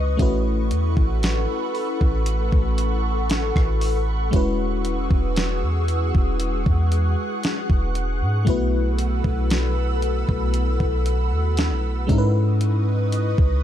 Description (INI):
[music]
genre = contemporary R&B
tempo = 58 BPM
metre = 4/4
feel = straight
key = unclear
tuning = A4 = 440 Hz
[part]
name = FM electric piano with soft pad layer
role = accompaniment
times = 0.0-13.6 s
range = G#3 to B4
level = -27 LUFS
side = left 2 dB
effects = chorus
[part]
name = ethereal airy pad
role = sustained chords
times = 0.0-13.6 s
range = G#4 to F#6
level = -28 LUFS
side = left 1 dB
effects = ensemble chorus, built-in reverb
[part]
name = warm 808-style bass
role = bass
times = 0.0-13.6 s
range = E1 to G#2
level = -21 LUFS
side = equal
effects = none
[part]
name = crisp 8-bit digital drum machine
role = drums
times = 0.2-13.6 s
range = hi-hat, kick drum, rim click, snare drum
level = -22 LUFS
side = equal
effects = none
[sound]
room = little or no reverb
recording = dark, warm production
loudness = -19 LUFS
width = side -11 dB against mid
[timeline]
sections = 0.0-13.6 A section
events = none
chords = 0.2 A69; 4.3 E69; 8.5 B7sus4; 12.1 C#m9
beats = | 0.19 1.23 2.26 3.30 | 4.33 5.37 6.40 7.43 | 8.47 9.50 10.54 11.57 | 12.61